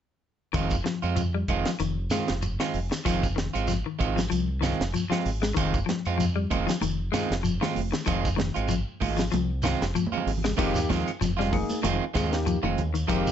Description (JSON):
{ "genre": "afrobeat", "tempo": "96 BPM", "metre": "4/4", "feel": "swing 55% on 16ths", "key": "F minor", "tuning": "A4 = 443 Hz", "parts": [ { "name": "clean electric guitar", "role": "arpeggios", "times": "0.5-13.3 s", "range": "Eb3 to Ab3", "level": "-30 LUFS", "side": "left 8 dB", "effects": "none" }, { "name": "electric guitar at the edge of break-up", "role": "stabs", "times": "0.5-13.3 s", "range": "Eb3 to F4", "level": "-30 LUFS", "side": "right 7 dB", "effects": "none" }, { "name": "deep dub fingered electric bass", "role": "bass", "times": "0.5-13.3 s", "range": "F1 to F2", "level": "-29 LUFS", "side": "equal", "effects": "none" }, { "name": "tight funk drum kit", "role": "drums", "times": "0.5-13.3 s", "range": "crash cymbal, hi-hat, kick drum, snare drum", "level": "-31 LUFS", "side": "right 1 dB", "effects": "none" }, { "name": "claves", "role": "percussion", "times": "0.5-13.3 s", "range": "none", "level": "-42 LUFS", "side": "left 6 dB", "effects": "none" }, { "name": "shekere", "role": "percussion", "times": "0.5-13.3 s", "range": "none", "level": "-36 LUFS", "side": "right 2 dB", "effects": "none" }, { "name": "congas", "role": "percussion", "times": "5.9-13.0 s", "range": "none", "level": "-34 LUFS", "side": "right 5 dB", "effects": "none" }, { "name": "barky tine electric piano", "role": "accompaniment", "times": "10.6-13.3 s", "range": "Bb3 to Ab4", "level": "-31 LUFS", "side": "left 4 dB", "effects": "overdrive" } ], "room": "light reverb", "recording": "nothing above 7.9 kHz", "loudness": "-24 LUFS", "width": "side -9 dB against mid", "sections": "0.6-10.6 A section; 10.6-13.3 B section", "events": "drum fill 10.0-10.6", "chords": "0.6 Fm7" }